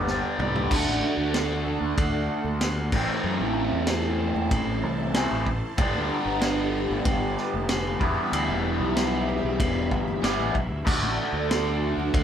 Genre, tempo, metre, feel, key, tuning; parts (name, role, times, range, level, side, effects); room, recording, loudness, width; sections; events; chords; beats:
psychedelic rock; 94 BPM; 4/4; straight; A4 = 442 Hz
string machine, cellos; sustained chords; 0.0-12.2 s; D4 to B5; -35 LUFS; right 1 dB; phaser, ensemble chorus
raw garage guitar; riff; 0.0-12.2 s; G2 to A4; -26 LUFS; equal; overdrive, phaser
fuzz fingered electric bass; bass; 0.0-12.2 s; E1 to F#2; -30 LUFS; equal; overdrive
vintage drum kit; drums; 0.1-12.2 s; crash cymbal, kick drum, ride cymbal, snare drum, toms; -28 LUFS; equal
congas; percussion; 0.4-12.1 s; -42 LUFS; left 6 dB
moderate studio reverb, RT60 0.8 s; band playing live in one room; -23 LUFS; side -9 dB against mid
0.7-12.2 A section
drum fill 0.1-0.7
0.0 G; 0.7 D; 2.9 Am; 5.8 Gadd9; 8.0 Em; 10.9 D
0.08 | 0.72 1.35 1.99 2.62 | 3.25 3.89 4.52 5.16 | 5.79 6.42 7.06 7.70 | 8.33 8.97 9.60 10.24 | 10.87 11.51 12.14